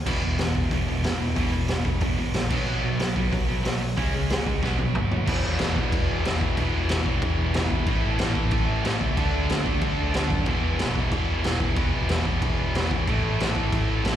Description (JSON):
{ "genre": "punk rock", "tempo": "185 BPM", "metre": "4/4", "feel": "straight", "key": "E major", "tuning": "A4 = 436 Hz", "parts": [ { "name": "overdriven picked electric bass", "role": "bass", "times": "0.0-14.2 s", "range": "E1 to F#2", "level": "-27 LUFS", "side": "equal", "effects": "none" }, { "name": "distorted electric guitar", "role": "riff", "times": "0.1-14.2 s", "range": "E2 to D4", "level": "-30 LUFS", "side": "right 1 dB", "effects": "distortion, slapback echo" }, { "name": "tight distorted guitar", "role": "riff", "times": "0.1-14.2 s", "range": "E2 to D4", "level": "-29 LUFS", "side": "equal", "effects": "distortion, slapback echo" }, { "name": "raw garage drum kit", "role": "drums", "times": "0.1-14.1 s", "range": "crash cymbal, hi-hat, kick drum, snare drum, toms", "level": "-26 LUFS", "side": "equal", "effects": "none" } ], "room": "small room ambience", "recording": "live gig heard through the venue's PA, recital hall reverb", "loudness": "-22 LUFS", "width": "side -11 dB against mid", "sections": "0.0-5.3 A section; 5.3-14.2 B section", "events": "drum fill 4.6-5.3", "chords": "0.1 E5; 2.5 B5; 4.0 C#5; 4.6 B; 5.3 E5; 7.9 A5; 9.2 D5; 10.5 E5; 13.1 A5", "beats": "| 0.07 0.39 0.72 1.04 | 1.37 1.70 2.02 2.35 | 2.68 3.00 3.33 3.65 | 3.98 4.30 4.63 4.96 | 5.28 5.61 5.93 6.25 | 6.58 6.90 7.23 7.55 | 7.88 8.20 8.52 8.85 | 9.17 9.50 9.82 10.15 | 10.47 10.79 11.12 11.44 | 11.77 12.09 12.42 12.74 | 13.07 13.39 13.72 14.04" }